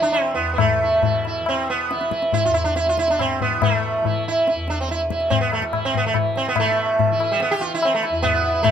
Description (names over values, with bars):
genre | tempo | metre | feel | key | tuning
indian classical, Hindustani | 141 BPM | 7/4 | straight | unclear | A4 = 440 Hz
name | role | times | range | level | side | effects
sitar | melody | 0.0-8.7 s | G3 to G4 | -19 LUFS | right 2 dB | none
tanpura | drone | 0.0-8.7 s | E2 to E3 | -30 LUFS | equal | none
tabla | percussion | 0.0-8.7 s | none | -23 LUFS | left 7 dB | none
room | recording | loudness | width
light reverb | minimal, uncompressed stereo recording | -18 LUFS | side -8 dB against mid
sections
0.0-6.6 A section; 6.6-8.7 B section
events
speeding up 0.0-8.7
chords
none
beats
0.15 | 0.59 1.03 1.46 1.90 2.33 2.76 3.19 | 3.62 4.05 4.47 4.90 5.32 5.74 6.16 | 6.58 7.00 7.42 7.83 8.24 8.66